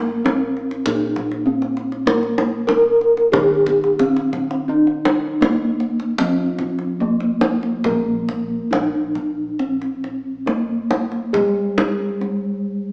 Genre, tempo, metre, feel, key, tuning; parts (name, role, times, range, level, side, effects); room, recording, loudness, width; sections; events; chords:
Javanese gamelan; 69-99 BPM; 4/4; straight; Bb slendro; A4 = 440 Hz
gamelan-type bronze metallophone; melody; 0.0-12.9 s; Ab3-45c to Bb4; -21 LUFS; equal
gamelan-type bossed gongs; bass; 0.0-12.9 s; Bb1 to Bb4; -27 LUFS; equal
kendang; percussion; 0.3-12.3 s; -26 LUFS; equal
moderate recital hall reverb, RT60 1.4 s; small speaker sound; -19 LUFS; mono
0.0-7.8 A section; 7.8-12.9 B section